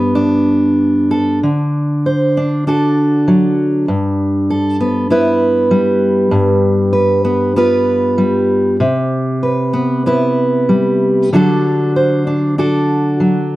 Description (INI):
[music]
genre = folk, solo fingerstyle acoustic guitar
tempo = 97 BPM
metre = 4/4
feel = rubato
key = G major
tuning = A4 = 440 Hz
[part]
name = fingerpicked steel-string acoustic guitar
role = solo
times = 0.0-13.6 s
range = G2 to C5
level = -12 LUFS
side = equal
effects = none
[sound]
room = light reverb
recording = dark, warm production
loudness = -12 LUFS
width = side -16 dB against mid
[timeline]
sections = 0.0-1.4 A section; 1.4-13.6 B section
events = none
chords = 0.0 Gadd9; 1.4 D; 3.9 G6; 6.3 G7; 8.8 Cmaj7; 11.3 D